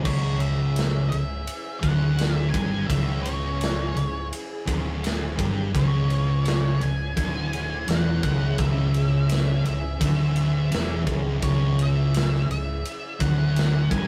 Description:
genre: stoner and doom metal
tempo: 84 BPM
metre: 4/4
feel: straight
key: C# minor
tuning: A4 = 441 Hz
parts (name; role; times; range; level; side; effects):
- thick fuzz guitar; riff; 0.0-14.1 s; C#2 to G2; -27 LUFS; equal; distortion
- thick fuzz guitar; riff; 0.0-14.1 s; C#2 to G2; -30 LUFS; equal; none
- octave-fuzz lead guitar; melody; 0.1-14.1 s; C#5 to G#5; -36 LUFS; equal; distortion
- phased string machine; sustained chords; 0.1-14.1 s; C#3 to G#4; -40 LUFS; equal; ensemble chorus, phaser
- fingered electric bass; bass; 0.1-14.1 s; C#1 to G1; -33 LUFS; equal; overdrive
- big rock drum kit; drums; 0.1-14.1 s; crash cymbal, kick drum, ride cymbal, snare drum; -31 LUFS; equal; none
room: moderate studio reverb, RT60 0.6 s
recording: rough rehearsal-room recording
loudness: -24 LUFS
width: mono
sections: 0.1-14.1 A section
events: none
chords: 0.1 C#m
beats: | 0.06 0.77 1.47 2.18 | 2.89 3.60 4.32 5.03 | 5.74 6.45 7.16 7.87 | 8.58 9.29 10.00 10.71 | 11.42 12.13 12.84 13.55

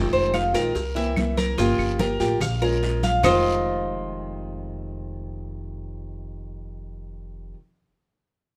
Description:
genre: latin, Cuban son and guajira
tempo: 145 BPM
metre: 4/4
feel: straight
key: F minor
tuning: A4 = 444 Hz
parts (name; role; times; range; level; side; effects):
- nylon-string guitar; accompaniment; 0.0-7.6 s; F2 to G4; -31 LUFS; equal; none
- upright bass; bass; 0.0-7.5 s; F1 to C2; -31 LUFS; equal; none
- Cuban tres; arpeggios; 0.1-7.5 s; F4 to F5; -26 LUFS; equal; none
- congas; percussion; 0.1-3.3 s; none; -32 LUFS; equal; none
- maracas; percussion; 0.1-3.3 s; none; -42 LUFS; equal; none
- claves; percussion; 0.3-3.3 s; none; -35 LUFS; equal; none
- cowbell and bongos; percussion; 0.3-3.3 s; none; -39 LUFS; equal; none
- guiro; percussion; 0.3-3.3 s; none; -43 LUFS; equal; none
room: light reverb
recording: none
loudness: -23 LUFS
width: mono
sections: 0.0-3.2 A section; 3.2-6.6 B section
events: none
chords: 0.0 Fm7; 0.8 C7; 1.6 Gm7b5; 2.4 Bbm7; 3.2 Fm7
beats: 0.34 0.76 1.17 | 1.58 2.00 2.41 2.83 | 3.24 3.66 4.07 4.49 | 4.90 5.32 5.73 6.15

